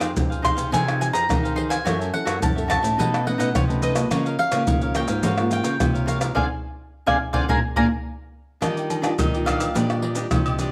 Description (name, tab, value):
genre	samba and choro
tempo	106 BPM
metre	4/4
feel	straight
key	unclear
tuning	A4 = 440 Hz
part	mandolin	melody	0.0-10.6 s	C#5 to D6	-28 LUFS	equal	none
part	cavaquinho	accompaniment	0.0-10.7 s	D4 to F5	-32 LUFS	equal	none
part	nylon-string guitar	accompaniment	0.0-10.7 s	Ab2 to A4	-31 LUFS	equal	none
part	nylon-string guitar	bass	0.0-10.7 s	F2 to Eb3	-28 LUFS	equal	none
part	maracas, pandeiro, tamborim, surdo and agogo bells	percussion	0.0-10.7 s	none	-27 LUFS	equal	none
room	moderate large studio reverb, RT60 1.0 s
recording	none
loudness	-22 LUFS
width	mono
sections	0.0-8.6 A section; 8.6-10.7 B section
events	band accent 6.4-8.6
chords	0.0 Fm7; 1.9 F#m7; 3.0 B9; 4.1 Db6; 6.4 D7(b5, no3); 7.5 Bb7; 8.6 Ebmaj9